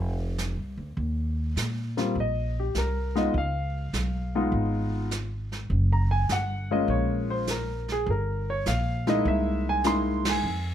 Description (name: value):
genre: jazz piano trio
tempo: 102 BPM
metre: 4/4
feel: swing 69% on 8ths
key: unclear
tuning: A4 = 439 Hz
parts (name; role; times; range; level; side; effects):
- upright bass; bass; 0.0-10.7 s; F1 to Bb2; -28 LUFS; equal; none
- jazz brush drum kit; drums; 0.4-10.7 s; brushed snare drum, hi-hat, kick drum, ride cymbal, snare drum; -33 LUFS; right 2 dB; none
- warm concert grand piano; melody; 2.0-10.7 s; G3 to C6; -27 LUFS; left 1 dB; plate reverb
room: light reverb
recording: close, detailed microphones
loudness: -24 LUFS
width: side -10 dB against mid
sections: 0.0-10.7 A section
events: band accent 10.1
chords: 0.0 Bbadd9 (rootless); 1.0 Eb5; 3.3 Db9; 5.7 Gbmaj9; 8.1 Gm7; 9.3 C7alt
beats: 0.39 | 0.98 1.57 2.17 2.76 | 3.35 3.94 4.53 5.12 | 5.71 6.30 6.89 7.49 | 8.08 8.67 9.26 9.85 | 10.44